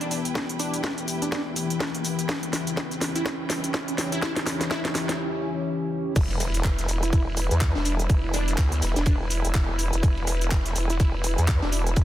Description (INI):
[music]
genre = bass house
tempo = 124 BPM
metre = 4/4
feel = swing 58% on 16ths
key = E dorian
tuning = A4 = 441 Hz
[part]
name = plucky unison lead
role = melody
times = 0.0-11.8 s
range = D4 to E4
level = -33 LUFS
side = equal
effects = lush chorus, dub echo
[part]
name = sweeping resonant pad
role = sustained chords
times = 0.0-12.0 s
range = E3 to G4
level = -32 LUFS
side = left 3 dB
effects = chorus, sidechain pumping
[part]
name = garage drum kit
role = drums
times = 0.0-12.0 s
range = crash cymbal, handclaps, hi-hat, shaker, snare drum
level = -29 LUFS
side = equal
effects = soft clipping on snare
[part]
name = riser and impact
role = sound effects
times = 0.9-8.1 s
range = none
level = -37 LUFS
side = right 1 dB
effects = none
[part]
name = clear studio string section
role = texture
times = 0.0-12.0 s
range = E4 to G5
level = -35 LUFS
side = equal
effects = sidechain pumping
[part]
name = electronic kick drum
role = drums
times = 0.4-12.0 s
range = none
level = -25 LUFS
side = equal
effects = high-pass filter on kick, high-pass filter on room
[part]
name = vowel-sweep wobble bass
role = bass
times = 6.2-12.0 s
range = E1 to E2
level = -25 LUFS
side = equal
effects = chorus, overdrive, sidechain pumping
[part]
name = vintage drum kit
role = drums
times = 6.2-12.0 s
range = ride cymbal, snare drum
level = -40 LUFS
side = right 2 dB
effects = high-pass filter on cymbals, high-pass filter on snare, high-pass filter on room
[sound]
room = light reverb, digital ambience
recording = dense, heavily limited modern master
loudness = -23 LUFS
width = side -13 dB against mid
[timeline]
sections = 0.0-6.2 A section; 6.2-12.0 B section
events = build-up 0.0-6.2; drum fill 0.0-5.2; filter sweep on analog synth pad 0.0-6.2; riser 0.9-5.2; drop 6.2-12.0; impact 6.2-8.1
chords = 0.0 Em